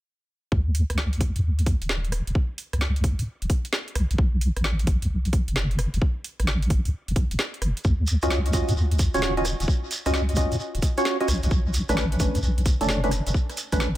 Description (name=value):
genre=UK garage, two-step garage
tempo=131 BPM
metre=4/4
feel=swing 66% on 16ths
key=unclear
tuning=A4 = 439 Hz
part: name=deep soft wobble bass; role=bass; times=0.5-14.0 s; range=Eb1 to Gb2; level=-24 LUFS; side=equal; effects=chorus
part: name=electronic kick drum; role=drums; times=0.5-13.8 s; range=none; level=-23 LUFS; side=equal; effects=studio ambience
part: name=garage drum kit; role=drums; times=0.7-13.9 s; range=hi-hat, rim click, snare drum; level=-30 LUFS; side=equal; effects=overdrive, studio ambience
part: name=shekere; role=percussion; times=7.8-13.9 s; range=none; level=-34 LUFS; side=right 2 dB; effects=tape echo
part: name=percussive organ stab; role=stabs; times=8.2-13.9 s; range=A3 to Eb5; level=-26 LUFS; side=right 1 dB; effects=wide subtle chorus, tape echo
room=digital ambience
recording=echo-heavy mix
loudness=-22 LUFS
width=side -15 dB against mid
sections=0.5-14.0 A section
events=filter sweep on wobble bass 0.5-14.0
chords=0.5 Eb7(no3); 4.0 B7(no3); 7.8 Ebm9; 11.3 Bm9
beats=| 0.52 0.98 1.44 1.89 | 2.35 2.81 3.27 3.73 | 4.18 4.64 5.10 5.56 | 6.02 6.47 6.93 7.39 | 7.85 8.31 8.76 9.22 | 9.68 10.14 10.60 11.05 | 11.51 11.97 12.43 12.89 | 13.34 13.80